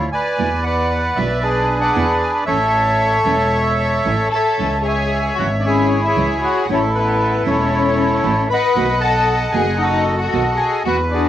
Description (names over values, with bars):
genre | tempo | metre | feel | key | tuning
tango | 115 BPM | 4/4 | rubato | A major | A4 = 440 Hz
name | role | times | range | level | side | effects
bandoneon | melody | 0.0-11.3 s | D4 to B5 | -17 LUFS | equal | cassette tape, analog delay
clear double bass | bass | 0.0-11.3 s | E1 to E2 | -22 LUFS | equal | none
nylon-string guitar | accompaniment | 0.4-11.0 s | B2 to F#4 | -23 LUFS | right 6 dB | cassette tape
warm studio violin section | second line | 4.3-11.3 s | B3 to B4 | -21 LUFS | left 8 dB | cassette tape
room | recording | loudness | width
moderate studio reverb, RT60 0.6 s | home recording on cassette | -15 LUFS | side -12 dB against mid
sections
0.0-11.3 A section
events
none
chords
0.4 E7; 2.5 A; 4.6 C#m; 6.7 A; 8.8 B7